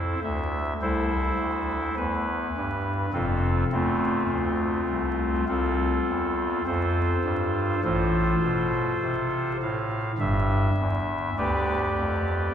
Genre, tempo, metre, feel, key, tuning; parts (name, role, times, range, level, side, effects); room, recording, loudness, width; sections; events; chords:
classical, chorale-style piece for pipe organ; 51 BPM; 4/4; rubato; A4 = 440 Hz
pipe organ, soft reed; solo; 0.0-12.5 s; F1 to F5; -23 LUFS; equal
wet church reverb, RT60 3.6 s; heard from further back in the room, vinyl crackle; -23 LUFS; side -9 dB against mid
0.0-12.5 A section
0.0 Am/C; 3.1 F; 7.9 F/A; 10.2 G